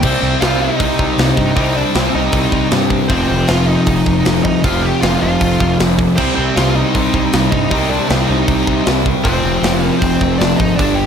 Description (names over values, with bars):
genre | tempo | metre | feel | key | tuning
punk rock | 156 BPM | 4/4 | straight | C minor | A4 = 440 Hz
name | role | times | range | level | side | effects
high-gain lead guitar | melody | 0.0-11.1 s | C4 to G5 | -20 LUFS | right 1 dB | distortion
sludgy distorted guitar | riff | 0.0-11.1 s | F2 to C4 | -15 LUFS | left 1 dB | overdrive
fuzz picked electric bass | bass | 0.0-11.1 s | F1 to G2 | -20 LUFS | equal | overdrive
tight metal drum kit | drums | 0.0-10.9 s | crash cymbal, hi-hat, kick drum, snare drum | -19 LUFS | equal | none
room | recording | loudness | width
little or no reverb | none | -12 LUFS | side -7 dB against mid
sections
0.0-11.1 A section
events
none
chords
0.0 Cm; 3.1 F5; 6.2 Cm; 9.3 F5